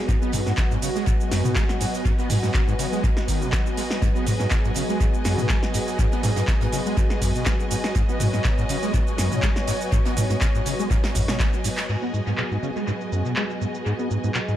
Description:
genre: acid house.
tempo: 122 BPM.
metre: 4/4.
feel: swing 53% on 16ths.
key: G# minor pentatonic.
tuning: A4 = 441 Hz.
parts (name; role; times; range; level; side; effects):
lush unison pad; sustained chords; 0.0-14.6 s; F#3 to C#5; -30 LUFS; equal; chorus, sidechain pumping.
warm studio string section; texture; 0.0-14.6 s; F#4 to G#5; -32 LUFS; equal; sidechain pumping.
overdriven acid bass; riff; 0.1-14.5 s; F#2 to B3; -26 LUFS; equal; distortion, tube saturation, ensemble chorus, dub echo.
electro analog drum machine; drums; 0.1-14.6 s; cabasa, crash cymbal, handclaps, hi-hat, snare drum, toms; -28 LUFS; right 1 dB; low-pass filter on perc, low-pass filter on toms, low-pass filter on hats, low-pass filter on snare, low-pass filter on cymbals, dub echo.
electronic kick drum; drums; 0.1-11.5 s; none; -23 LUFS; equal; none.
open jazz drum kit; drums; 0.1-11.9 s; hi-hat, snare drum; -41 LUFS; right 3 dB; none.
room: light reverb, small room ambience.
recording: echo-heavy mix.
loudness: -20 LUFS.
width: side -12 dB against mid.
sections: 0.0-11.9 A section; 11.9-14.6 B section.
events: drop 0.0-11.9; drum fill 11.4-11.9.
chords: 0.0 G#m7.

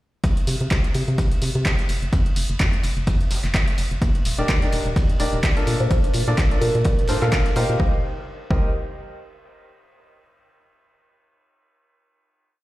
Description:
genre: piano house.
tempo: 127 BPM.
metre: 4/4.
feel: swing 56% on 16ths.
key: C dorian.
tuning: A4 = 438 Hz.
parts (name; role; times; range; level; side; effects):
organ-like FM bass; bass; 0.2-8.7 s; Eb1 to C3; -24 LUFS; equal; sidechain pumping.
electronic kick drum; drums; 0.2-8.6 s; none; -21 LUFS; equal; overdrive.
punchy analog drum machine; drums; 0.2-7.8 s; handclaps, hi-hat; -28 LUFS; equal; overdrive.
raw garage drum kit; drums; 0.2-7.7 s; ride cymbal, snare drum; -36 LUFS; equal; sidechain pumping on cymbals, high-pass filter on cymbals, high-pass filter on snare, high-pass filter on room.
clear baby grand piano; riff; 4.4-8.7 s; D4 to F5; -26 LUFS; equal; sidechain pumping, tape echo.
kalimba; melody; 5.8-7.1 s; Bb4 to C5; -28 LUFS; right 1 dB; tape echo.
room: small room ambience.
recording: played on a big sound system in a bare room, stone room reverb.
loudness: -18 LUFS.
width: side -17 dB against mid.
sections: 0.2-7.8 groove; 7.8-9.7 final chord.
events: none.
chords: 0.2 N.C.; 4.0 Ebmaj7; 5.7 Bbmaj7; 7.8 Cm7.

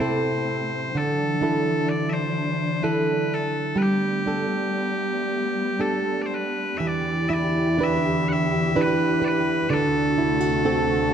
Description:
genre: celtic folk, Celtic slow air.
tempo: 56-65 BPM.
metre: 3/4.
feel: rubato.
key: unclear.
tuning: A4 = 439 Hz.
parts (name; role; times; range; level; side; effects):
loud bright bagpipes; melody; 0.0-11.1 s; G4 to F#5; -26 LUFS; left 2 dB; none.
flamenco guitar; accompaniment; 0.0-11.1 s; A2 to B4; -23 LUFS; right 3 dB; none.
dark chamber string section; sustained chords; 0.0-11.1 s; D2 to G4; -28 LUFS; left 4 dB; none.
room: moderate scoring stage reverb, RT60 1.5 s.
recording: dark, warm production.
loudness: -21 LUFS.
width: side -8 dB against mid.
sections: 0.0-6.8 A section; 6.8-11.1 B section.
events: none.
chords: 0.0 Am; 0.9 Dadd9; 3.8 Gadd9; 6.8 Em7; 9.7 D7.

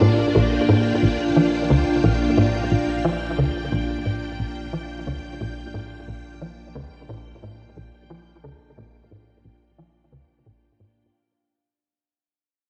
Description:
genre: ambient, sequencer-driven space music.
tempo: 89 BPM.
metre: 4/4.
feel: straight.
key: Bb major.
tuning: A4 = 439 Hz.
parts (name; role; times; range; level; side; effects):
string machine, full ensemble; sustained chords; 0.0-11.1 s; Bb3 to G5; -25 LUFS; equal; ensemble chorus, cassette tape.
tight sequencer bass; riff; 0.0-11.0 s; Bb1 to F3; -24 LUFS; equal; ensemble chorus, cassette tape, delay.
warm sub bass; bass; 0.0-11.1 s; Bb1; -39 LUFS; equal; none.
room: wet spring reverb, RT60 2.3 s.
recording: home recording on cassette.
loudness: -21 LUFS.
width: mono.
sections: 0.0-11.1 A section.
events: fade-out 0.0-11.1; filter sweep on analog synth bass 0.0-11.1.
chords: 0.0 Bb.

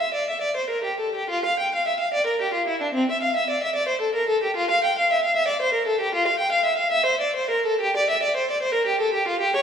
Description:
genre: classical, baroque-style suite movement for unaccompanied violin.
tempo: 74 BPM (dotted quarters).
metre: 12/8.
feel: rubato.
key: F major.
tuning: A4 = 440 Hz.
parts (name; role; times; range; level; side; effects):
rich violin; solo; 0.0-9.6 s; C4 to G5; -20 LUFS; equal; none.
room: wet scoring stage reverb, RT60 2.0 s.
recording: heard from further back in the room, studio ambience.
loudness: -20 LUFS.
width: side -7 dB against mid.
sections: 0.0-9.6 A section.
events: none.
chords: none.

